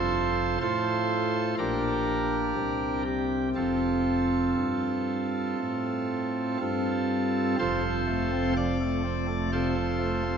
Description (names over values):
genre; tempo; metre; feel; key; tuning
classical, chorale-style piece for pipe organ; 61 BPM; 4/4; straight; F major; A4 = 440 Hz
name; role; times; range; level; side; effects
pipe organ, cornet; solo; 0.0-10.4 s; F1 to D5; -25 LUFS; right 1 dB; none
room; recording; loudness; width
wet church reverb, RT60 3.2 s; nothing above 7.7 kHz; -25 LUFS; side -7 dB against mid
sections
0.0-7.6 A section; 7.6-10.4 B section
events
none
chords
0.0 F; 1.6 Gm/Bb; 2.6 C5; 3.6 F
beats
0.61 1.57 2.56 | 3.57 4.58 5.59 6.60 | 7.59 8.56 9.52